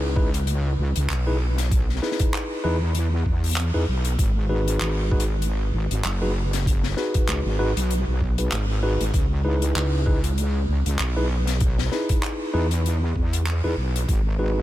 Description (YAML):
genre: glitch hop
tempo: 97 BPM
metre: 4/4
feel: swing 57% on 16ths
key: C# minor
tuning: A4 = 440 Hz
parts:
  - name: mellow tine electric piano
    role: stabs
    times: 0.0-14.6 s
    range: D#4 to B4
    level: -28 LUFS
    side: equal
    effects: sidechain pumping, tape echo
  - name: wobble bass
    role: bass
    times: 0.0-14.6 s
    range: F#1 to E2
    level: -23 LUFS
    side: equal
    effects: chorus, tube saturation
  - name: electronic kick drum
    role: drums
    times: 0.2-14.2 s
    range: none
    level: -23 LUFS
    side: equal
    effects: none
  - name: modern studio drum kit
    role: drums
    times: 0.3-14.2 s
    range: handclaps, hi-hat, snare drum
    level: -31 LUFS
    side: left 2 dB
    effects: none
room: studio ambience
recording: none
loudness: -20 LUFS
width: side -14 dB against mid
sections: 0.0-14.6 A section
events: none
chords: 0.0 C#m7; 4.2 G#m7; 9.1 C#m7; 14.1 G#m7